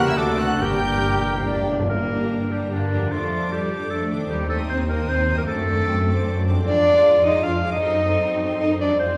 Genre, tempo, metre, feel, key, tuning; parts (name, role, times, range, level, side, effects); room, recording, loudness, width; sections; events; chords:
classical; 152 BPM; 3/4; rubato; G minor; A4 = 440 Hz
rich symphonic violin section; melody; 0.0-9.2 s; Bb5 to G6; -39 LUFS; equal
mellow hollow small flute group; second line; 0.0-1.7 s; D5 to G5; -32 LUFS; equal
rich symphonic violin section; second line; 0.0-9.2 s; A3 to G5; -36 LUFS; equal
warm oboe; second line; 0.0-1.7 s; D4 to G4; -31 LUFS; equal
rich symphonic viola section; accompaniment; 0.0-9.2 s; Ab3 to C5; -32 LUFS; equal
bright trombone section; sustained chords; 0.0-1.7 s; C#3 to A3; -34 LUFS; equal
dark French horn section; sustained chords; 0.0-1.7 s; barely audible
concert harp; arpeggios; 0.0-9.2 s; F2 to G5; -35 LUFS; equal
bright trumpet; stabs; 0.0-1.7 s; A4 to A#4; -30 LUFS; equal
rich symphonic cello section; bass; 0.0-9.2 s; G2 to F4; -30 LUFS; equal
rich symphonic double bass section; bass; 0.0-9.2 s; G1 to G2; -28 LUFS; equal
timpani; percussion; 0.6-2.5 s; G2; -32 LUFS; equal
bright clarinet; second line; 1.0-9.2 s; D4 to F5; -24 LUFS; equal
wet recital hall reverb, RT60 1.7 s; recorded in a church or concert hall; -21 LUFS; mono
0.0-1.9 A section; 1.9-9.2 B section
timpani fill 0.6-1.9
0.2 D7; 0.6 Gm; 3.1 Dm/F; 4.3 Cm/Eb; 5.5 D7/F#; 6.7 Ddim/F